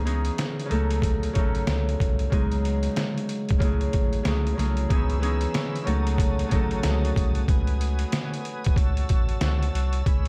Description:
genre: hip hop, boom-bap hip-hop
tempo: 93 BPM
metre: 4/4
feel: swing 62% on 16ths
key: C# minor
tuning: A4 = 442 Hz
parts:
  - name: Celtic harp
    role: accompaniment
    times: 0.0-9.9 s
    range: C#3 to A4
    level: -31 LUFS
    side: equal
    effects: high-pass filter, low-pass filter
  - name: soft dub sub bass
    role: bass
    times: 0.0-10.3 s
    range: A1 to C#2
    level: -28 LUFS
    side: equal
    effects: none
  - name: trip hop sampler-style drum kit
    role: drums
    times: 0.1-10.3 s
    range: hi-hat, kick drum, snare drum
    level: -28 LUFS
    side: equal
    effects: none
  - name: tonewheel organ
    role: sustained chords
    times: 4.9-10.3 s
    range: F#4 to E6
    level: -37 LUFS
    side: equal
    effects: chorus vibrato, subtle chorus, high-pass filter, low-pass filter
room: little or no reverb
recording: vinyl crackle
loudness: -24 LUFS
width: mono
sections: 0.0-4.9 A section; 4.9-10.3 B section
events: none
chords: 0.0 C#m7; 0.7 D#m7b5; 2.3 G#m7/C#; 3.6 F#m7; 4.9 C#m7; 5.9 D#m7b5; 7.5 G#m7/C#; 8.8 F#m7

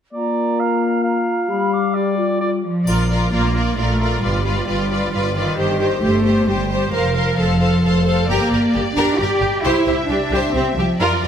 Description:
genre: cinematic, heroic adventure film score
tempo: 133 BPM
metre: 3/4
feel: straight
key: Bb major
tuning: A4 = 441 Hz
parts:
  - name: clear oboe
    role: second line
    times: 0.1-2.5 s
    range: D5 to F5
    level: -24 LUFS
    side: equal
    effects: none
  - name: dark clarinet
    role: second line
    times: 0.1-2.6 s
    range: F4 to G4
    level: -23 LUFS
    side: left 1 dB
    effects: none
  - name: small flute group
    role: second line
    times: 0.1-2.5 s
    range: Bb5 to D6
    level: -25 LUFS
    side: right 4 dB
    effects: none
  - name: mellow French horn section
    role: sustained chords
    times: 0.1-2.6 s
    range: G3 to Bb3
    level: -22 LUFS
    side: left 6 dB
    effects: none
  - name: warm studio cello section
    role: bass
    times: 2.6-11.3 s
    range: Eb3 to G4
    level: -20 LUFS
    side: equal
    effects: none
  - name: warm symphonic violin section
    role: melody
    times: 2.9-11.3 s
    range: C5 to F5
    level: -26 LUFS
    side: left 3 dB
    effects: none
  - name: bright symphonic violin section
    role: second line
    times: 2.9-11.3 s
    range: G4 to C5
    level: -25 LUFS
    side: left 3 dB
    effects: none
  - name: clear studio viola section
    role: accompaniment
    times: 2.9-11.3 s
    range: F4 to Bb4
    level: -22 LUFS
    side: right 1 dB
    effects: none
  - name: rich symphonic double bass section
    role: bass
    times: 2.9-11.3 s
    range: F1 to F2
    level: -22 LUFS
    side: right 2 dB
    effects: none
  - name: triangle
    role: percussion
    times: 2.9-3.7 s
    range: none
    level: -37 LUFS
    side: left 5 dB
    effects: none
room: moderate scoring stage reverb, RT60 1.9 s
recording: none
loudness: -16 LUFS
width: side -8 dB against mid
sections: 0.1-2.9 A section; 2.9-11.3 B section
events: none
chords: 0.1 Bb; 1.5 G7(no3); 2.9 Bb; 4.2 G7; 5.6 Cm/G; 6.9 Fsus4; 7.4 F; 8.3 Gm; 9.6 C

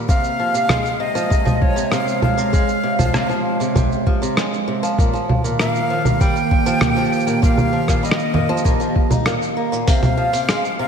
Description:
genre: folktronica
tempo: 98 BPM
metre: 4/4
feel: straight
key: Db lydian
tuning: A4 = 441 Hz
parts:
  - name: warbly tape-like pad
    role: sustained chords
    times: 0.0-10.9 s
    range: Eb3 to F5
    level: -23 LUFS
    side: right 3 dB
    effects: chorus, built-in reverb
  - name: picked swing-style acoustic guitar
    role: arpeggios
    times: 0.0-10.9 s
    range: Bb2 to Eb4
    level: -23 LUFS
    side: left 1 dB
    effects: low-pass filter, ping-pong delay
  - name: breathy bright jazz flute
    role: melody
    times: 0.1-10.9 s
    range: Db5 to G5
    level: -22 LUFS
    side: equal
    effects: ping-pong delay
  - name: electronic kick drum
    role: drums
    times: 0.1-10.0 s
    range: none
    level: -18 LUFS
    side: equal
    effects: overdrive
  - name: lo-fi sampler-style drum kit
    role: drums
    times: 0.1-10.8 s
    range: congas, hi-hat, rim click, shaker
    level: -21 LUFS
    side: right 1 dB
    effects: overdrive
room: wet lush hall reverb, RT60 1.9 s, digital ambience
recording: dreamy mix soaked in reverb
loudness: -16 LUFS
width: side -7 dB against mid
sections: 0.0-9.9 A section; 9.9-10.9 B section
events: none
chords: 0.1 Dbmaj7; 5.0 Ebadd9; 9.9 Abmaj13/C

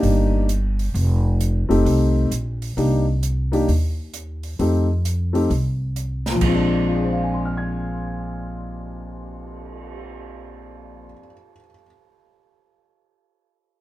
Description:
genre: jazz, small-group swing and bop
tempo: 132 BPM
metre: 4/4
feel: swing 66% on 8ths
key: Bb mixolydian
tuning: A4 = 440 Hz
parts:
  - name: warm upright piano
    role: accompaniment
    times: 0.0-11.9 s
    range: Bb2 to Ab6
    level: -22 LUFS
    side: left 1 dB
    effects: none
  - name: upright bass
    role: bass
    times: 0.0-11.1 s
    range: F1 to F2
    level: -21 LUFS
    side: equal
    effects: none
  - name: open jazz drum kit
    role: drums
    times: 0.0-10.0 s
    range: crash cymbal, cymbal swell, hi-hat, kick drum, snare drum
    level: -31 LUFS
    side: right 2 dB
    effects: none
room: light reverb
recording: minimal, uncompressed stereo recording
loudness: -18 LUFS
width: side -15 dB against mid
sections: 0.0-6.4 A section; 6.4-10.1 B section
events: none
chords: 0.0 Cm7 (rootless); 0.9 F9; 2.8 Cm7; 4.6 F9; 6.4 Bb9

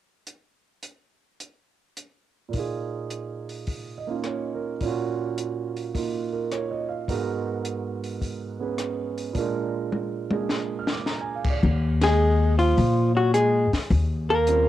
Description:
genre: jazz, small-group swing and bop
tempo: 106 BPM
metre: 4/4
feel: swing 69% on 8ths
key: Eb minor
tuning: A4 = 439 Hz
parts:
  - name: compact cocktail drum kit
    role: drums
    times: 0.3-14.6 s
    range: crash cymbal, hi-hat, kick drum, ride cymbal, rim click, snare drum, toms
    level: -31 LUFS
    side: left 1 dB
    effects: cassette tape
  - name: warm grand piano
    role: accompaniment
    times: 2.5-14.7 s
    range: Ab2 to F6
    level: -28 LUFS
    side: right 6 dB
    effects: cassette tape
  - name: upright bass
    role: bass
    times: 11.6-14.7 s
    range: Eb2 to Bb2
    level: -21 LUFS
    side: left 2 dB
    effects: none
  - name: vintage hollow-body jazz guitar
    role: melody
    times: 12.0-14.7 s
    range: F4 to Bb4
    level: -22 LUFS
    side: left 2 dB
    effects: none
  - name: warm alto saxophone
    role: second line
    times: 12.0-14.7 s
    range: F3 to Bb3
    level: -28 LUFS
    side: right 7 dB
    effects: cassette tape
room: light reverb, small room ambience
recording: home recording on cassette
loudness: -23 LUFS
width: side -13 dB against mid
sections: 0.3-2.5 A section; 2.5-11.6 B section; 11.6-14.7 C section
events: drum fill 9.9-11.1; band accent 11.9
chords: 0.3 N.C.; 2.5 Bb7sus4; 4.8 Ebm7/Bb; 7.1 Abm7; 9.4 Bb7; 11.6 Ebsus24; 13.9 Eb13

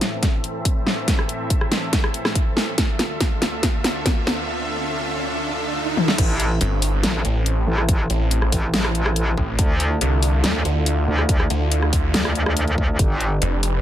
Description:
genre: heavy wobble dubstep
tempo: 141 BPM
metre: 4/4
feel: half-time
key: A minor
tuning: A4 = 445 Hz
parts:
  - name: supersaw pad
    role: sustained chords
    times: 0.0-13.8 s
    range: D2 to E5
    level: -27 LUFS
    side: equal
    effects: sidechain pumping, low-pass filter
  - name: dubstep drum kit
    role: drums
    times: 0.0-13.7 s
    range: crash cymbal, hi-hat, rim click, snare drum, toms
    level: -22 LUFS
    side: left 1 dB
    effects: none
  - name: riser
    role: sound effects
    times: 2.5-6.2 s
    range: none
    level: -31 LUFS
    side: right 3 dB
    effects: none
  - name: electronic kick drum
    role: drums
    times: 0.2-13.1 s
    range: none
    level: -21 LUFS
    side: equal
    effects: none
  - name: metallic wobble bass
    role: bass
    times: 6.2-13.4 s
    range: G1 to D2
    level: -20 LUFS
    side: equal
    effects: chorus, overdrive
  - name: snarling distorted saw bass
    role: bass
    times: 6.6-13.8 s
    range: F1 to D2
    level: -20 LUFS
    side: equal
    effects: distortion, overdrive
room: little or no reverb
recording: none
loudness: -18 LUFS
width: side -11 dB against mid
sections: 0.0-6.2 A section; 6.2-13.8 B section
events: build-up 0.0-6.2; drum fill 0.0-4.5, 6.0; filter sweep on supersaw synth 0.0-6.2; riser 2.5-6.2; drop 6.2-13.8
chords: 0.0 Am; 2.8 Dmadd9; 6.2 Am; 9.6 Dmadd9; 13.0 G

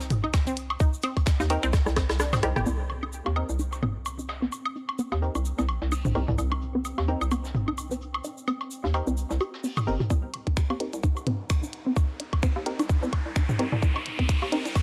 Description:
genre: minimal techno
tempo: 129 BPM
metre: 4/4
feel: swing 57% on 16ths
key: C minor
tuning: A4 = 441 Hz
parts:
  - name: hollow knocking FM bass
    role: bass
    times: 0.0-14.8 s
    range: G1 to Eb2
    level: -32 LUFS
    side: equal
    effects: sidechain pumping, high-pass filter
  - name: minimal click drum kit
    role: drums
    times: 0.0-14.8 s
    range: cabasa, finger snaps, hi-hat, rim click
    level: -37 LUFS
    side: equal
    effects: studio reverb
  - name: soft brush drum kit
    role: drums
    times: 0.0-10.1 s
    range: hi-hat, shaker, snare drum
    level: -45 LUFS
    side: equal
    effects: sidechain pumping on hats, high-pass filter on hats, low-pass filter on hats, studio reverb, high-pass filter on snare, low-pass filter on snare, sidechain pumping on perc, high-pass filter on perc, low-pass filter on perc, high-pass filter on room, low-pass filter on room
  - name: electronic toms and woodblock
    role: percussion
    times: 0.1-14.8 s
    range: none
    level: -32 LUFS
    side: equal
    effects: overdrive, studio reverb
  - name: resonant blip pluck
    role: riff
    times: 0.2-14.6 s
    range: C4 to G4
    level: -33 LUFS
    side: equal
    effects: chorus, phaser, sidechain pumping, analog delay
  - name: electronic kick drum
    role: drums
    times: 0.3-2.1, 10.1-14.8 s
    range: none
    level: -26 LUFS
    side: equal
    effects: studio reverb
  - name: wavetable chord stab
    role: stabs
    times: 1.5-14.6 s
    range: C4 to Bb4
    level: -36 LUFS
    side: equal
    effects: analog delay
  - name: swarming drone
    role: texture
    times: 3.8-14.8 s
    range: C4 to Eb4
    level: -47 LUFS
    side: equal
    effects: none
  - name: riser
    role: sound effects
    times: 11.2-14.8 s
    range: none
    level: -39 LUFS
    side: equal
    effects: none
room: digital ambience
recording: dry, gritty hardware recording, cassette tape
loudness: -27 LUFS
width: mono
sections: 0.0-2.7 A section; 2.7-10.1 B section; 10.1-14.8 C section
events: drop 0.0-2.7; drum fill 1.7-2.7; kick drops out 2.2-2.7; band accent 2.5; build-up 10.1-14.8; filter sweep on synth arpeggio sound 10.1-14.8; riser 11.3-14.8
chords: 0.0 Cm7; 2.7 Cm; 10.1 Cm7

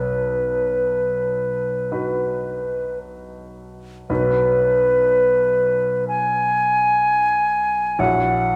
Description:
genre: classical, romantic duo for flute and grand piano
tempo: 52-64 BPM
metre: 4/4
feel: rubato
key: B major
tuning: A4 = 443 Hz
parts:
  - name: concert flute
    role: melody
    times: 0.0-8.6 s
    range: B4 to G#5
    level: -20 LUFS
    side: equal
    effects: none
  - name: clear baby grand piano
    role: accompaniment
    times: 0.0-8.6 s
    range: A#1 to C#5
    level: -29 LUFS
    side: equal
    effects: none
room: moderate recital hall reverb, RT60 1.6 s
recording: none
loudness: -20 LUFS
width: mono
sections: 0.0-4.1 A section; 4.1-8.6 B section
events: none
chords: 0.0 B; 8.0 F#7/A#

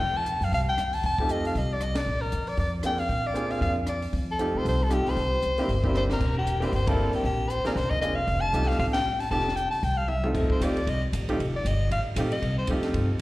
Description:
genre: jazz, small-group swing and bop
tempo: 232 BPM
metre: 4/4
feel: swing 58% on 8ths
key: F mixolydian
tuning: A4 = 436 Hz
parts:
  - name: bright soprano saxophone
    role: melody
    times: 0.0-12.7 s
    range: G4 to A5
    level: -28 LUFS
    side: left 1 dB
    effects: plate reverb, slapback echo
  - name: upright bass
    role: bass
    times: 0.0-13.2 s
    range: E1 to C3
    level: -28 LUFS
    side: equal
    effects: none
  - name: compact cocktail drum kit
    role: drums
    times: 0.3-13.0 s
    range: crash cymbal, hi-hat, kick drum, ride cymbal, rim click, snare drum, toms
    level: -34 LUFS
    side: equal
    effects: none
  - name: clear baby grand piano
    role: accompaniment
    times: 1.2-13.1 s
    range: A3 to Bb4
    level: -30 LUFS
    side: right 1 dB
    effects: plate reverb, slapback echo
room: moderate club reverb, RT60 0.6 s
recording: live gig heard through the venue's PA, recital hall reverb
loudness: -24 LUFS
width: side -18 dB against mid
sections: 0.0-10.4 A section; 10.4-13.2 B section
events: band accent 1.9, 6.9, 8.9; drum fill 5.9, 10.1; soprano saxophone solo 10.4-13.2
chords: 0.0 F9; 2.1 Bb9; 4.1 F9; 5.2 C9; 7.2 Bb9; 8.3 F9; 9.8 Cadd11; 10.4 F9

